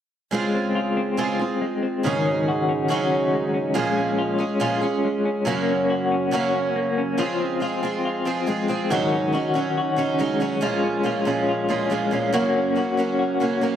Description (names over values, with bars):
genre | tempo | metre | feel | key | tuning
indie pop | 140 BPM | 4/4 | straight | Db major | A4 = 440 Hz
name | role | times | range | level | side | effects
picked twelve-string acoustic guitar | accompaniment | 0.3-13.8 s | Gb2 to Ab4 | -24 LUFS | right 4 dB | none
electric guitar through a small old amp | arpeggios | 0.3-13.8 s | Eb3 to Gb4 | -23 LUFS | left 3 dB | tremolo
room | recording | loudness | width
moderate club reverb, RT60 0.8 s | dark, warm production | -20 LUFS | side -9 dB against mid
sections
0.3-7.2 A section; 7.2-13.8 B section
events
none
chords
0.3 Dbmaj7; 2.0 Ab7sus4; 3.8 Bbm7; 5.5 Gb; 7.2 Dbmaj7; 8.9 Ab7sus4; 10.6 Bbm7; 12.3 Gb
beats
| 0.32 0.75 1.18 1.61 | 2.04 2.47 2.90 3.33 | 3.75 4.18 4.61 5.04 | 5.47 5.90 6.33 6.76 | 7.19 7.62 8.04 8.47 | 8.90 9.33 9.76 10.19 | 10.62 11.05 11.48 11.91 | 12.34 12.77 13.20 13.62